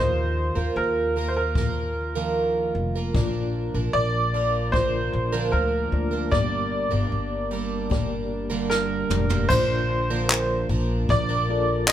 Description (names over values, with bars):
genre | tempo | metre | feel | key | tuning
acoustic pop | 76 BPM | 4/4 | straight | Bb major | A4 = 437 Hz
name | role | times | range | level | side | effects
bright upright piano | melody | 0.0-11.9 s | Bb4 to Eb5 | -26 LUFS | equal | ping-pong delay
picked plugged-in twelve-string acoustic guitar | accompaniment | 0.0-11.9 s | G2 to Bb4 | -28 LUFS | right 4 dB | none
upright bass | bass | 0.0-11.9 s | F1 to Eb2 | -27 LUFS | equal | none
jazz brush drum kit | drums | 1.6-11.9 s | crash cymbal, handclaps, kick drum, snare drum, toms | -25 LUFS | left 1 dB | none
reed electric piano | accompaniment | 3.1-11.9 s | Bb3 to D5 | -33 LUFS | left 6 dB | fast tremolo
room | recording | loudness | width
light reverb | band playing live in one room | -21 LUFS | side -11 dB against mid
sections
0.0-9.5 A section; 9.5-11.9 B section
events
drum fill 8.7-9.5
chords
0.0 Ebsus2; 3.1 Bb; 6.3 Gm; 9.5 Bb